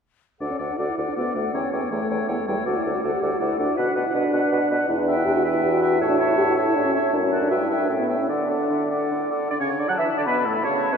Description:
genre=quick classical-period movement for wind quintet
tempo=160 BPM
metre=3/4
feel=rubato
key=D major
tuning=A4 = 440 Hz
part: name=bright silver concert flute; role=melody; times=0.4-11.0 s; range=F#5 to B5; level=-29 LUFS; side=left 5 dB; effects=none
part: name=warm oboe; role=second line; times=0.4-11.0 s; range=A4 to F#5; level=-28 LUFS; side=left 2 dB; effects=none
part: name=bright clarinet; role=accompaniment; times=0.4-11.0 s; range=A4 to F#5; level=-30 LUFS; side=right 4 dB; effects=none
part: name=dark French horn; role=accompaniment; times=0.4-11.0 s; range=G3 to A4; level=-24 LUFS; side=equal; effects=none
part: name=mellow bassoon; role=bass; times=0.4-11.0 s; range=D2 to F#3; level=-26 LUFS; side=right 2 dB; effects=none
room=wet cathedral reverb, RT60 5.1 s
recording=minimal, uncompressed stereo recording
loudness=-20 LUFS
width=side -6 dB against mid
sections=0.4-9.5 A section; 9.5-11.0 A section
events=none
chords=0.4 D; 1.5 A7/E; 2.7 D; 3.8 Bm; 4.9 Em; 6.0 A; 7.1 D/F#; 7.5 Em/G; 7.9 A5; 8.3 D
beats=| 0.41 0.79 1.17 | 1.54 1.91 2.29 | 2.66 3.03 3.40 | 3.78 4.15 4.51 | 4.88 5.25 5.63 | 6.00 6.38 6.76 | 7.13 7.51 7.90 | 8.29 8.70 9.10 | 9.50 9.88 10.26 | 10.64

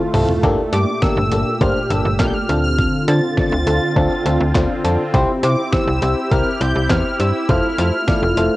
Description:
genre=synth-pop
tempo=102 BPM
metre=4/4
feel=straight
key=G dorian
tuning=A4 = 439 Hz
part: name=wide unison lead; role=melody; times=0.0-8.6 s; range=D6 to A6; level=-24 LUFS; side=equal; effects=cassette tape
part: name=FM electric piano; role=accompaniment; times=0.0-8.6 s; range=Bb3 to D5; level=-21 LUFS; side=left 2 dB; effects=chorus, cassette tape
part: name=sweeping resonant pad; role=sustained chords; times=0.0-8.6 s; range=Bb2 to G4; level=-22 LUFS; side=equal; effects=chorus, cassette tape
part: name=slap-like FM bass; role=bass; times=0.1-8.5 s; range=F1 to D3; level=-18 LUFS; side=equal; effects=none
part: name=dusty soul sampler-style drum kit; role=drums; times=0.1-8.5 s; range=handclaps, hi-hat, kick drum, snare drum, toms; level=-20 LUFS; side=equal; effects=overdrive, cassette tape
room=light reverb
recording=home recording on cassette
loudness=-15 LUFS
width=side -18 dB against mid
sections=0.0-8.6 A section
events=drum fill 0.0-0.4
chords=0.4 Gmadd9; 2.5 Dm7; 5.1 C; 7.5 Fmaj7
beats=| 0.43 1.02 1.61 2.20 | 2.79 3.37 3.96 4.55 | 5.14 5.73 6.32 6.90 | 7.49 8.08

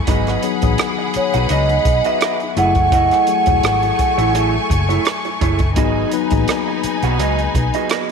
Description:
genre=lush 1970s-style soul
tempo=84 BPM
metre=4/4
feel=swing 54% on 16ths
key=unclear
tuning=A4 = 440 Hz
part: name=clear studio string section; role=second line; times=0.0-8.1 s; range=A3 to C#6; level=-23 LUFS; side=left 2 dB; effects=none
part: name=mellow tine electric piano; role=accompaniment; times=0.0-8.1 s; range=F#3 to B4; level=-23 LUFS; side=left 13 dB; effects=phaser
part: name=electric guitar through a small old amp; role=riff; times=0.1-8.1 s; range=A3 to F#5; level=-24 LUFS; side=right 14 dB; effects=none
part: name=vintage muted fingered electric bass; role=bass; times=0.1-7.7 s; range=E1 to C#2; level=-20 LUFS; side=equal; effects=none
part: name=compact cocktail drum kit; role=drums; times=0.1-8.1 s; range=hi-hat, kick drum, rim click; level=-21 LUFS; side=right 1 dB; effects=none
part: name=vibraphone with soft mallets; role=melody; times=1.2-4.3 s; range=C#5 to F#5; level=-17 LUFS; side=right 1 dB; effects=none
room=light reverb, small room ambience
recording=1960s-style stereo with parts hard left and right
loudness=-14 LUFS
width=side -6 dB against mid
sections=0.0-8.1 A section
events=none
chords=0.1 G#m7; 2.6 F#m9; 5.8 G#m7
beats=| 0.08 0.79 1.50 2.21 | 2.92 3.63 4.34 5.05 | 5.76 6.47 7.19 7.90

